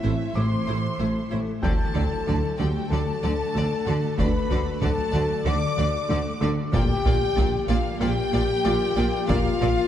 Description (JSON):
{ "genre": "cinematic, hybrid orchestral and electronic film score", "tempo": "94 BPM", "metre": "4/4", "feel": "straight", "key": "unclear", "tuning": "A4 = 443 Hz", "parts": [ { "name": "clear symphonic violin section", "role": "melody", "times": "0.0-9.7 s", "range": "C5 to D5", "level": "-38 LUFS", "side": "left 1 dB", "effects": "none" }, { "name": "rich symphonic violin section", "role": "second line", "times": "0.0-9.9 s", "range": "E5 to D6", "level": "-32 LUFS", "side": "left 3 dB", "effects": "none" }, { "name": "rich symphonic viola section", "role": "accompaniment", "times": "0.0-9.7 s", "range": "F#3 to F#4", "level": "-35 LUFS", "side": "right 1 dB", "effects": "none" }, { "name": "granular cloud pad", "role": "sustained chords", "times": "0.0-9.9 s", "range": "D3 to D5", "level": "-32 LUFS", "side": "left 1 dB", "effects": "built-in reverb" }, { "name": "mellow French horn section", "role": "sustained chords", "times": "0.0-9.9 s", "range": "E4 to D5", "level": "-28 LUFS", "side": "left 4 dB", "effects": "none" }, { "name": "thumb-piano-like synth pluck", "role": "arpeggios", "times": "0.0-9.5 s", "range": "D3 to F4", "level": "-35 LUFS", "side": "left 1 dB", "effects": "none" }, { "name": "smooth gliding synth bass", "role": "riff", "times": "0.0-9.8 s", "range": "D2 to Bb3", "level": "-31 LUFS", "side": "left 2 dB", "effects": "none" }, { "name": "rich symphonic cello section", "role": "bass", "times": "0.0-9.7 s", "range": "A2 to D3", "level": "-30 LUFS", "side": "right 2 dB", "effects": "none" }, { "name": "rich symphonic double bass section", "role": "bass", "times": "0.0-9.7 s", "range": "A1 to D2", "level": "-29 LUFS", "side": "right 2 dB", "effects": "none" }, { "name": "felt-muted upright piano", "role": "texture", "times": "0.0-9.9 s", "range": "F4 to G6", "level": "-38 LUFS", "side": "equal", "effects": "tape echo" }, { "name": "taiko ensemble", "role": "drums", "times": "1.6-9.9 s", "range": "none", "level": "-27 LUFS", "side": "equal", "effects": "none" } ], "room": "wet scoring stage reverb, RT60 2.0 s", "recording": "dark, warm production", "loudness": "-21 LUFS", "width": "side -10 dB against mid", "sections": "0.0-9.9 A section", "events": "none", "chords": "0.0 Am; 1.6 D; 6.7 Bb", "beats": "0.36 1.00 | 1.64 2.27 2.91 3.55 | 4.19 4.83 5.47 6.10 | 6.74 7.38 8.02 8.66 | 9.29" }